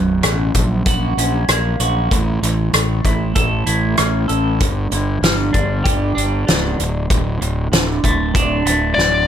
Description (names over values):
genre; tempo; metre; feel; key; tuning
quiet-loud alternative rock; 96 BPM; 4/4; straight; unclear; A4 = 441 Hz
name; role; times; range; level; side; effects
clean electric guitar; arpeggios; 0.0-9.3 s; B1 to A4; -20 LUFS; right 2 dB; phaser
fuzz fingered electric bass; bass; 0.0-9.3 s; B0 to A#1; -19 LUFS; equal; overdrive
loose indie drum kit; drums; 0.2-9.1 s; hi-hat, kick drum, rim click, snare drum; -18 LUFS; equal; none
high-gain lead guitar; melody; 8.9-9.3 s; D5; -14 LUFS; left 5 dB; distortion
room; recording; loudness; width
small room reverb; none; -15 LUFS; side -9 dB against mid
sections
0.0-9.3 A section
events
drum fill 9.0-9.3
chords
0.0 B5; 0.5 F#/A#; 2.1 A; 4.6 G; 6.8 D5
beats
0.23 0.86 1.48 | 2.10 2.73 3.35 3.98 | 4.60 5.23 5.85 6.47 | 7.10 7.72 8.35 8.97